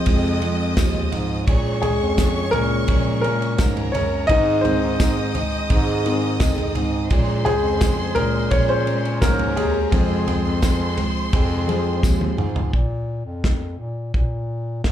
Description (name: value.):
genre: piano-driven pop.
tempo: 85 BPM.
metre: 4/4.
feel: straight.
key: Bb minor.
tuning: A4 = 440 Hz.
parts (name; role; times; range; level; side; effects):
rich studio violin section; second line; 0.0-12.7 s; Bb4 to Eb6; -30 LUFS; equal; slapback echo.
warm concert grand piano; accompaniment; 0.0-12.8 s; Db3 to Eb5; -22 LUFS; left 2 dB; slapback echo.
fingerpicked steel-string acoustic guitar; riff; 0.0-12.7 s; F2 to Ab4; -27 LUFS; right 6 dB; none.
warm bass clarinet; bass; 0.1-14.9 s; Eb2 to Bb2; -25 LUFS; equal; none.
loose indie drum kit; drums; 0.1-14.9 s; kick drum, ride cymbal, snare drum, toms; -22 LUFS; equal; none.
tambourine; percussion; 0.8-12.2 s; none; -37 LUFS; left 3 dB; none.
room: little or no reverb.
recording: live gig heard through the venue's PA, club reverb.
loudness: -18 LUFS.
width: side -11 dB against mid.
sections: 0.0-12.7 A section; 12.7-14.9 B section.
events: grand piano solo 0.0-12.7; drum fill 12.0-12.7.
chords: 0.0 Fm; 1.5 Bbm7; 4.3 Ab; 7.1 Bbm7; 9.9 Fm; 12.7 Bb5.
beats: 0.07 0.77 | 1.48 2.18 2.89 3.59 | 4.29 5.00 5.70 6.41 | 7.11 7.81 8.52 9.22 | 9.92 10.62 11.33 12.03 | 12.74 13.44 14.14 14.85.